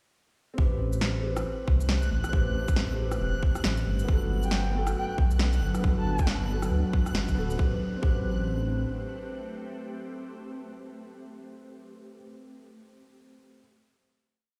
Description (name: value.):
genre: future garage.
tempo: 137 BPM.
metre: 4/4.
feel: swing 61% on 16ths.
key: A dorian.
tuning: A4 = 441 Hz.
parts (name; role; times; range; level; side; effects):
felt-muted upright piano; accompaniment; 0.5-13.6 s; F#3 to B4; -39 LUFS; equal; sidechain pumping, tape echo.
ethereal airy pad; sustained chords; 1.5-11.8 s; F#3 to B4; -39 LUFS; equal; ensemble chorus, built-in reverb, phaser, sidechain pumping.
dark detuned saw bass; bass; 0.6-8.9 s; D1 to D2; -30 LUFS; equal; sidechain pumping.
electronic kick drum; drums; 0.6-8.2 s; none; -27 LUFS; equal; none.
backwards swelling texture; texture; 1.3-7.6 s; F#6; -45 LUFS; equal; built-in reverb.
electronic shaker, snare drum and rim click; drums; 0.9-7.6 s; none; -35 LUFS; equal; none.
breathy flute-like synth lead; melody; 4.4-6.3 s; G5 to A5; -40 LUFS; equal; lush chorus, analog delay.
room: little or no reverb.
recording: played on a big sound system in a bare room, stone room reverb.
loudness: -28 LUFS.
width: mono.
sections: 0.6-7.6 groove; 7.6-11.1 final chord.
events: band accent 7.1.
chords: 0.6 Am7; 4.1 Gmaj7; 7.6 Am7.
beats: | 0.58 1.02 1.46 1.89 | 2.33 2.77 3.21 3.64 | 4.08 4.52 4.96 5.40 | 5.83 6.27 6.71 7.15 | 7.59 8.02 8.46 8.90 | 9.34 9.78 10.21 10.65.